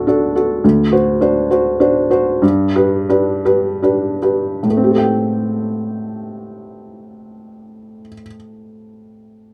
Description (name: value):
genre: classical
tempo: 72-106 BPM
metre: 3/4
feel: rubato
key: A dorian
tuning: A4 = 437 Hz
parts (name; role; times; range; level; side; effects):
- felt-muted upright piano; accompaniment; 0.0-9.5 s; D2 to G5; -16 LUFS; equal; none
room: light reverb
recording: recorded outdoors, with no room sound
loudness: -15 LUFS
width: mono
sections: 0.0-4.6 A section; 4.6-9.5 B section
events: slowing down 0.0-4.6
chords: 0.0 D; 0.6 D7; 2.4 G; 4.6 Am7